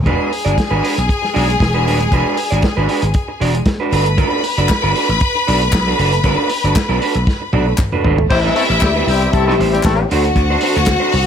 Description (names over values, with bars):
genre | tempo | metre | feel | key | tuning
disco | 116 BPM | 4/4 | straight | unclear | A4 = 439 Hz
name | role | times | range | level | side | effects
bright studio string section | second line | 0.0-11.3 s | E4 to B5 | -19 LUFS | left 3 dB | none
vintage slap bass | bass | 0.0-11.3 s | D#1 to D2 | -17 LUFS | equal | none
electric guitar through a small old amp | accompaniment | 0.1-11.2 s | G3 to D5 | -19 LUFS | right 4 dB | none
warm soul drum kit | drums | 0.1-11.3 s | crash cymbal, hi-hat, kick drum, snare drum, toms | -19 LUFS | equal | none
group handclap | percussion | 4.7-11.0 s | none | -27 LUFS | left 5 dB | none
warm French horn section | sustained chords | 8.3-11.3 s | C3 to G4 | -22 LUFS | left 4 dB | stereo widening
clear horn section | stabs | 8.3-10.1 s | G3 to C5 | -19 LUFS | left 4 dB | none
room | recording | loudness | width
light reverb, studio ambience | none | -13 LUFS | side -8 dB against mid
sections
0.1-8.3 A section; 8.3-11.3 B section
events
drum fill 7.3-8.3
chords
0.1 E9; 3.9 Gmaj9; 8.3 Am9; 10.1 D7